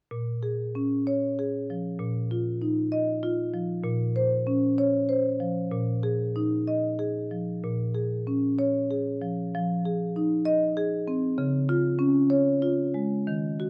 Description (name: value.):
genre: classical, contemporary piece for solo marimba.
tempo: 96 BPM.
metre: 3/4.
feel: rubato.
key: Bb minor.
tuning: A4 = 440 Hz.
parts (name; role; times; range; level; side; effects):
marimba with medium hard mallets; solo; 0.1-13.7 s; Bb2 to Eb5; -27 LUFS; equal; none.
room: moderate large studio reverb, RT60 1.4 s.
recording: dark, warm production.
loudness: -27 LUFS.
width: mono.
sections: 0.1-7.6 A section; 7.6-13.7 B section.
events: none.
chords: 0.1 Bbm7; 2.0 F7sus4/Bb; 3.9 Bbmadd9; 5.7 Fm7/Bb; 7.6 Bbm7; 9.5 Fm7; 11.4 Db.